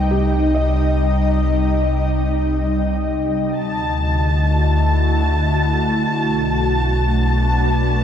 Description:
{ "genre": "ambient", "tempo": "free time", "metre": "none", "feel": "none", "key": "unclear", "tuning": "A4 = 440 Hz", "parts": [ { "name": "ethereal airy pad", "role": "sustained chords", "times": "0.0-8.0 s", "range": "B2 to G5", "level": "-19 LUFS", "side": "equal", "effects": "ensemble chorus, built-in reverb" }, { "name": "felt-muted upright piano", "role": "arpeggios", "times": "0.0-3.6 s", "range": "G4 to G5", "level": "-30 LUFS", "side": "left 1 dB", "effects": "ping-pong delay" }, { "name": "warm sub bass", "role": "bass", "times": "0.0-8.0 s", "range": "B1 to D2", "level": "-19 LUFS", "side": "equal", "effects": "none" }, { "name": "dark symphonic violin section", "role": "texture", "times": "3.6-8.0 s", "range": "A5", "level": "-22 LUFS", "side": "left 1 dB", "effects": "none" } ], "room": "wet lush hall reverb, RT60 2.7 s", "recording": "dark, warm production", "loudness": "-16 LUFS", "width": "side -9 dB against mid", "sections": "0.0-3.6 A section; 3.6-8.0 B section", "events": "fade-out on felt piano 0.0-3.6", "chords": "0.0 Cm; 3.6 D; 6.1 Bm7" }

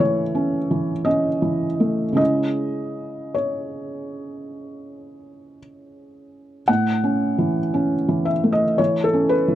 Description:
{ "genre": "neoclassical minimalist piano", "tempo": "51-58 BPM", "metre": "4/4", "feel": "rubato", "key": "unclear", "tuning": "A4 = 444 Hz", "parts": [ { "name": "felt-muted upright piano", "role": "solo", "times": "0.0-9.6 s", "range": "A2 to F#5", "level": "-19 LUFS", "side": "equal", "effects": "none" } ], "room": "light reverb", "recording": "dry, close 1970s-style studio recording", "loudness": "-18 LUFS", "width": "side -12 dB against mid", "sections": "0.0-6.7 A section; 6.7-9.6 A section", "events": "none", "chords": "0.0 A; 2.2 C#m; 6.7 A" }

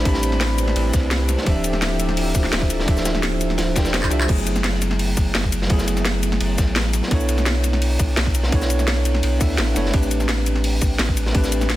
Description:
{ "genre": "liquid drum and bass", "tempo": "170 BPM", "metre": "4/4", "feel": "straight", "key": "unclear", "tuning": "A4 = 440 Hz", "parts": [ { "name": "bell-like tine electric piano", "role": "accompaniment", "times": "0.0-11.8 s", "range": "F3 to B5", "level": "-24 LUFS", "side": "equal", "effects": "tape echo" }, { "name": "warm analog pad", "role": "sustained chords", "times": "0.0-4.3 s", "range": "F3 to B5", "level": "-31 LUFS", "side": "left 1 dB", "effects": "chorus, vintage 12-bit sampler grit, sidechain pumping" }, { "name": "vibraphone with medium mallets", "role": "arpeggios", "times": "0.0-4.3 s", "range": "E4 to C5", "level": "-29 LUFS", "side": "right 2 dB", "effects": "tape echo" }, { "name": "warm sub bass", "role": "bass", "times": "0.0-11.8 s", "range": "D1 to D2", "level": "-22 LUFS", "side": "equal", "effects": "none" }, { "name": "crunchy breakbeat drum kit", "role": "drums", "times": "0.1-11.8 s", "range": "hi-hat, ride cymbal, snare drum", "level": "-28 LUFS", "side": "equal", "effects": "high-pass filter on cymbals, studio reverb, high-pass filter on hats, high-pass filter on snare, high-pass filter on room" }, { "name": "drum and bass drum kit", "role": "drums", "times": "0.1-11.8 s", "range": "cabasa, crash cymbal, handclaps, hi-hat, ride cymbal, snare drum", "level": "-25 LUFS", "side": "left 1 dB", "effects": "overdrive, studio reverb" }, { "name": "electronic kick drum", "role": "drums", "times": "0.1-11.4 s", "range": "none", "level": "-20 LUFS", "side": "equal", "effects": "overdrive, studio reverb" } ], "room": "light reverb, small room ambience", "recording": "dense, heavily limited modern master", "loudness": "-17 LUFS", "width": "side -15 dB against mid", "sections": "0.0-4.3 A section; 4.3-11.8 A section", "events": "drop 0.0-4.3, 4.3-11.8; drum fill 4.0", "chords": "0.0 Am11; 1.5 Dm11; 4.3 F#m11; 7.1 Bm11; 9.9 Am11" }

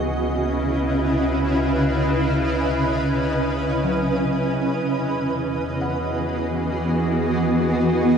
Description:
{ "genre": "ambient", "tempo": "free time", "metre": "none", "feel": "none", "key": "unclear", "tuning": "A4 = 439 Hz", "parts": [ { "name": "shimmering ambient pad", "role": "sustained chords", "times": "0.0-8.2 s", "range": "C#3 to D#5", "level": "-20 LUFS", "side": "right 1 dB", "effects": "chorus, built-in reverb, shimmer reverb" }, { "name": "concert harp", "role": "arpeggios", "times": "0.0-8.2 s", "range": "F#3 to G#5", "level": "-32 LUFS", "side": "left 4 dB", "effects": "ping-pong delay, shimmer reverb" }, { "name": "warm sub bass", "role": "bass", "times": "0.0-8.2 s", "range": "C#2 to E2", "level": "-30 LUFS", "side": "equal", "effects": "none" } ], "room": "wet concert hall reverb, RT60 2.3 s", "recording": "dark, warm production, nothing above 10.8 kHz", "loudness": "-19 LUFS", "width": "side -7 dB against mid", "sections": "0.0-8.2 A section", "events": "fade-out on harp 0.0-8.2; fade-out on sub bass 0.0-8.2", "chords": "0.0 C#m7; 4.7 Emaj7" }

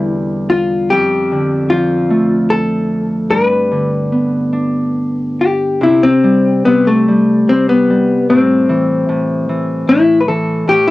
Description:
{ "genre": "celtic folk, Celtic slow air", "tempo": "70-77 BPM", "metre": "3/4", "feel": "rubato", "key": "C major", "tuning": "A4 = 441 Hz", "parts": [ { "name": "vintage hollow-body jazz guitar", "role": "melody", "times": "0.0-10.9 s", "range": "A3 to B4", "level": "-12 LUFS", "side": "left 2 dB", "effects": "none" }, { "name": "Celtic harp", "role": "accompaniment", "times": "0.0-10.9 s", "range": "E2 to D4", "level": "-16 LUFS", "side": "equal", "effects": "none" } ], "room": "moderate booth ambience, RT60 0.2 s", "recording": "home recording on cassette", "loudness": "-11 LUFS", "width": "side -17 dB against mid", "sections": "0.0-5.8 A section; 5.8-10.9 B section", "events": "none", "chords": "0.0 Cadd9/E; 0.9 Dm/F; 3.3 G; 5.8 C5; 8.3 Am" }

